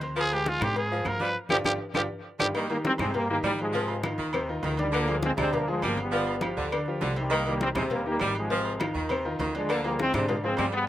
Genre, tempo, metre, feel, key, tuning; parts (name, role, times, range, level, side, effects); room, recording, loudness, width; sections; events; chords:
latin, salsa; 202 BPM; 4/4; straight; C minor; A4 = 443 Hz
bright concert grand piano; accompaniment; 0.0-10.8 s; C3 to C6; -32 LUFS; equal
upright bass; bass; 0.0-10.9 s; G1 to Ab2; -34 LUFS; equal
agogo bells and timbales; percussion; 0.0-10.9 s; -38 LUFS; right 4 dB
congas; percussion; 0.0-10.7 s; -36 LUFS; left 2 dB
cowbell; percussion; 0.0-10.7 s; -36 LUFS; left 5 dB; slapback echo
growling trumpet; melody; 0.2-2.5 s; F4 to B4; -28 LUFS; equal; slapback echo
clear saxophone section; second line; 0.2-10.7 s; C3 to G3; -32 LUFS; right 2 dB; slapback echo
claves; percussion; 0.2-10.7 s; -37 LUFS; left 4 dB
bright trombone section; melody; 2.4-10.9 s; Eb3 to C4; -29 LUFS; equal
little or no reverb; recorded outdoors, with no room sound; -25 LUFS; side -13 dB against mid
0.0-2.5 A section; 2.5-10.9 B section
band accent 1.4-2.5; drum fill 2.0-2.5
0.2 Dm7b5; 1.4 G5; 2.5 Cm; 3.7 Ab6; 4.9 Dm7b5; 6.1 G7; 7.3 Cm; 8.5 Ab6; 9.7 Dm7b5